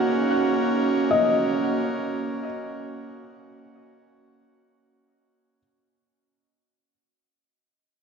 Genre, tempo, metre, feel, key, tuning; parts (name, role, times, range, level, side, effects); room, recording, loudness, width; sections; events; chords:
ambient; free time; A4 = 441 Hz
airy breathy pad; sustained chords; 0.0-5.6 s; A#3 to G#4; -23 LUFS; right 2 dB; chorus
felt-muted upright piano; arpeggios; 0.0-5.6 s; D#5 to F#5; -26 LUFS; left 3 dB; tape echo
wet concert hall reverb, RT60 2.4 s; nothing above 7.6 kHz; -21 LUFS; side -6 dB against mid
0.0-5.6 A section
fade-out 0.0-5.6
0.0 F#